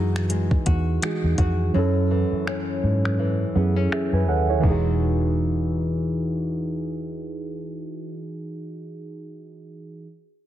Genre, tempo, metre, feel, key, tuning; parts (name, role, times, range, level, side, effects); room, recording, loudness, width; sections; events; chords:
contemporary R&B; 83 BPM; 4/4; swing 58% on 16ths; E major; A4 = 437 Hz
muted felt-like synth keys; accompaniment; 0.0-10.1 s; E3 to G#5; -26 LUFS; right 4 dB; chorus
flamenco guitar; arpeggios; 0.0-8.2 s; F#2 to F#4; -29 LUFS; left 6 dB; ping-pong delay
vintage muted fingered electric bass; bass; 0.0-7.8 s; E1 to G#2; -23 LUFS; equal
smooth R&B drum kit; drums; 0.2-4.8 s; crash cymbal, finger snaps, hi-hat, kick drum; -26 LUFS; equal; soft clipping on snare
little or no reverb; dense, heavily limited modern master, low-pass filter; -20 LUFS; side -12 dB against mid
0.0-4.6 A section; 4.6-7.5 B section
filter sweep 0.0-4.6; kick muted 1.7-4.6
0.0 Emaj9; 1.7 F#m7; 4.6 Emaj9